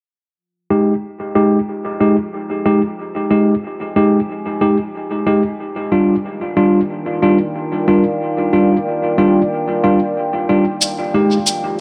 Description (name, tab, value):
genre	ambient dub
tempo	92 BPM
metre	4/4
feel	swing 57% on 16ths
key	F dorian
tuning	A4 = 443 Hz
part	deep dark ambient pad	sustained chords	1.9-11.8 s	Eb4 to Ab5	-26 LUFS	equal	chorus, built-in reverb
part	tine electric piano	stabs	0.7-11.4 s	G3 to G4	-17 LUFS	equal	low-pass filter, dub echo
part	shaker	drums	10.8-11.6 s	none	-19 LUFS	equal	small room ambience, dub echo
room	moderate echo chamber reverb, RT60 1.8 s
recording	echo-heavy mix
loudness	-16 LUFS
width	mono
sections	0.4-11.8 A section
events	fade-in on ambient pad 0.4-11.8; filter sweep on tine electric piano 0.4-11.8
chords	0.4 Fm9; 5.6 Ebmaj9; 10.8 Fm9